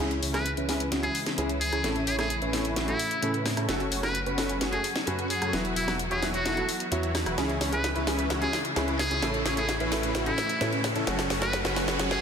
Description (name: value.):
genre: EDM, festival progressive house.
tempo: 130 BPM.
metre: 4/4.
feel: straight.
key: C# minor.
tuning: A4 = 440 Hz.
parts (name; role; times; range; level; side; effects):
bright grand piano; accompaniment; 0.0-12.2 s; A2 to A4; -34 LUFS; right 1 dB; dub echo.
clear symphonic string section; sustained chords; 0.0-12.2 s; C#3 to F#4; -37 LUFS; left 2 dB; none.
dense compressed supersaw; riff; 0.0-12.2 s; C#4 to E5; -31 LUFS; equal; vintage 12-bit sampler grit, low-pass filter, dub echo.
detuned saw bass; bass; 0.0-12.2 s; E1 to A2; -34 LUFS; equal; tube saturation.
riser; sound effects; 0.0-12.2 s; none; -39 LUFS; equal; none.
house drum kit; drums; 0.1-12.2 s; hi-hat, rim click, snare drum; -31 LUFS; left 1 dB; none.
trumpet with metal mute; melody; 0.3-12.2 s; E4 to B4; -31 LUFS; equal; dub echo.
room: moderate lush hall reverb, RT60 2.0 s.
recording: dense, heavily limited modern master.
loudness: -25 LUFS.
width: side -7 dB against mid.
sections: 0.0-12.2 A section.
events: build-up 0.0-12.2; drum fill 0.0-12.2; riser 0.0-12.2; filter sweep on supersaw synth 0.0-12.2.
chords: 0.0 C#m; 1.8 A; 3.7 F#m; 5.5 Esus2; 7.4 C#m; 9.2 A; 11.1 F#m.